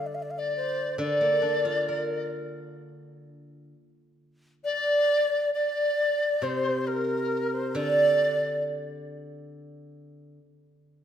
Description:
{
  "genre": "chinese traditional, Chinese chamber ensemble",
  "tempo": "68 BPM",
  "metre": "4/4",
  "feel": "rubato",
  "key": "D jue mode",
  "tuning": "A4 = 440 Hz",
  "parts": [
    { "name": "breathy bright xiao", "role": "melody", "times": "0.0-8.6 s", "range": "Bb4 to F5", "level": "-27 LUFS", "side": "right 1 dB", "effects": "none" },
    { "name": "steel-string zither", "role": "accompaniment", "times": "0.0-10.4 s", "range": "C3 to Bb4", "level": "-30 LUFS", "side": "right 1 dB", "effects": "none" },
    { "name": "large dizi", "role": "second line", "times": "0.4-8.6 s", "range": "Bb4 to D5", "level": "-28 LUFS", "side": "left 2 dB", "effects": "none" }
  ],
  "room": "wet scoring stage reverb, RT60 1.9 s",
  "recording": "none",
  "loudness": "-24 LUFS",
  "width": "side -9 dB against mid",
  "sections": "0.0-4.6 A section; 4.6-11.0 B section",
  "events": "none",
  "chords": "none"
}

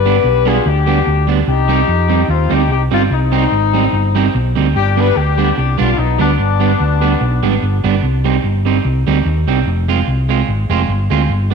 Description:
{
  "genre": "ska",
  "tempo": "146 BPM",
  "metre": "4/4",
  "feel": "swing 54% on 8ths",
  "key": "C harmonic minor",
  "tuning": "A4 = 439 Hz",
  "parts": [
    { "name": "warm horn section", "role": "melody", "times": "0.0-7.8 s", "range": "B3 to B4", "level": "-17 LUFS", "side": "left 10 dB", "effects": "none" },
    { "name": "fingered electric bass", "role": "bass", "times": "0.0-11.5 s", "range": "F1 to F2", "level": "-15 LUFS", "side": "equal", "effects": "none" },
    { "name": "electric guitar at the edge of break-up", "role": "accompaniment", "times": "0.1-11.5 s", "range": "G3 to F4", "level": "-17 LUFS", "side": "right 10 dB", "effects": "spring reverb, slapback echo" }
  ],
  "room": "moderate echo chamber reverb, RT60 1.5 s, small room ambience",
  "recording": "1960s-style stereo with parts hard left and right",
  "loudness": "-12 LUFS",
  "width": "side -5 dB against mid",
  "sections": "0.0-4.7 A section; 4.7-11.5 B section",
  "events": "none",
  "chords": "0.0 G; 1.5 Cm; 4.7 G; 8.0 Cm; 9.7 Fm"
}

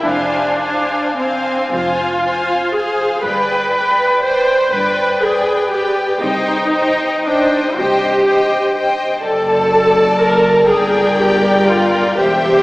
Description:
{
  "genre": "classical, slow romantic movement for string orchestra",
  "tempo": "35-42 BPM (dotted quarters)",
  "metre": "6/8",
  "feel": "rubato",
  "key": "unclear",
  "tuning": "A4 = 441 Hz",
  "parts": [
    { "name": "warm symphonic violin section", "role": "melody", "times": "0.0-12.6 s", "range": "G5 to A5", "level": "-21 LUFS", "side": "left 2 dB", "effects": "none" },
    { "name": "rich symphonic violin section", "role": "second line", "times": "0.0-12.6 s", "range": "A4 to F5", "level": "-19 LUFS", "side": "left 1 dB", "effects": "none" },
    { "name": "clear symphonic viola section", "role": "accompaniment", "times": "0.0-12.6 s", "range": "C4 to C5", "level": "-15 LUFS", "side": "equal", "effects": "none" },
    { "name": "rich symphonic cello section", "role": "bass", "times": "0.1-12.6 s", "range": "E2 to C3", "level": "-25 LUFS", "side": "equal", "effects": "none" },
    { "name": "rich symphonic double bass section", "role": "bass", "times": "0.1-12.6 s", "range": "E1 to C2", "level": "-29 LUFS", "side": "equal", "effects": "none" }
  ],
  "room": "wet cathedral reverb, RT60 4.0 s",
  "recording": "recorded in a church or concert hall, small speaker sound",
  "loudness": "-12 LUFS",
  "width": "side -20 dB against mid",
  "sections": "0.0-12.6 A section",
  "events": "none",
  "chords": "0.1 Fm; 3.2 G; 6.2 Cm; 9.2 D/F#; 10.7 Gm"
}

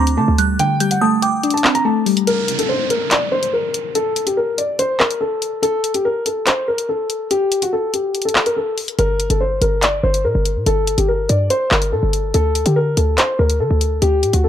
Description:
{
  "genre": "hip hop, drill",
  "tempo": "143 BPM",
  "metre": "4/4",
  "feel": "half-time",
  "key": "G harmonic minor",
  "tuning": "A4 = 440 Hz",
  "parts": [
    { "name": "dark concert grand piano", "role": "melody", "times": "0.0-14.5 s", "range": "F#4 to Bb5", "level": "-18 LUFS", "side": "left 1 dB", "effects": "none" },
    { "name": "delicate synth tine bell", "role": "second line", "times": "0.0-2.2 s", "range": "D6 to G6", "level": "-23 LUFS", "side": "right 2 dB", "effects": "chorus, phaser, tremolo, ping-pong delay" },
    { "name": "glassy wavetable pluck", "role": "accompaniment", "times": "0.0-2.3 s", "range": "D3 to D4", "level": "-18 LUFS", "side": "equal", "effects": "chorus" },
    { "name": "short 808-style bass", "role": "bass", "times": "0.0-0.6, 9.0-14.5 s", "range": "G1 to D3", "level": "-17 LUFS", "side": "equal", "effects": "none" },
    { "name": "drill drum kit", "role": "drums", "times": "0.1-14.4 s", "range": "handclaps, hi-hat, rim click", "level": "-19 LUFS", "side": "equal", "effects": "none" },
    { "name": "downlifter", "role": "sound effects", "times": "2.3-5.6 s", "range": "none", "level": "-26 LUFS", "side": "equal", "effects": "none" }
  ],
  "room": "little or no reverb",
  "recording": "dark, warm production",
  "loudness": "-15 LUFS",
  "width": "side -10 dB against mid",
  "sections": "0.0-2.3 A section; 2.3-14.5 B section",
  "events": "kick muted 0.6-2.3; break 2.3-9.0",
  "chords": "0.0 D7sus4; 2.3 N.C.; 9.0 Gmadd9; 12.3 D5"
}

